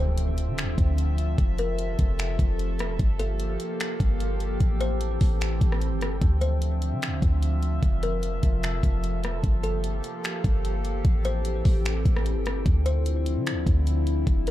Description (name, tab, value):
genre	hip hop, atmospheric cloud-rap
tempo	149 BPM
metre	4/4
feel	half-time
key	D minor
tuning	A4 = 441 Hz
part	kalimba	melody	0.0-14.5 s	A4 to C5	-35 LUFS	left 4 dB	tape echo
part	warbly tape-like pad	sustained chords	0.0-14.5 s	C3 to E5	-32 LUFS	left 1 dB	chorus, built-in reverb, phaser, sidechain pumping
part	clean 808-style bass	bass	0.0-14.5 s	E1 to D3	-25 LUFS	equal	none
part	impact	sound effects	0.0-1.4 s	none	-36 LUFS	equal	none
part	drifting glass-harmonics texture	texture	0.0-12.6 s	A3 to G5	-40 LUFS	equal	chorus, built-in reverb
part	smooth R&B drum kit	drums	0.2-14.5 s	finger snaps, hi-hat, kick drum, rim click	-25 LUFS	equal	none
room	little or no reverb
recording	dark, warm production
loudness	-23 LUFS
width	side -14 dB against mid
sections	0.0-12.7 A section; 12.7-14.5 A section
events	impact 0.0-1.4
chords	0.0 Dm9; 1.4 Fmaj7; 3.0 Gm9; 4.6 Am7; 6.2 Dm9; 7.8 Fmaj7; 9.4 Gm9; 11.0 Am7; 12.7 Dm9